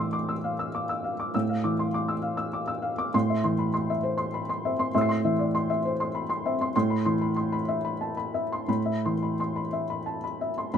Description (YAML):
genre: neoclassical minimalist piano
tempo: 84-103 BPM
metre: 3/4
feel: rubato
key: A minor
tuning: A4 = 439 Hz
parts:
  - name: felt-muted upright piano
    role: solo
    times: 0.0-10.8 s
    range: A2 to C7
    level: -25 LUFS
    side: equal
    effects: none
room: light reverb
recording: minimal, uncompressed stereo recording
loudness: -25 LUFS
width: side -8 dB against mid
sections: 0.0-10.7 A section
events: none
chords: 0.0 Dmadd9/A; 3.1 C/A; 6.7 Amadd9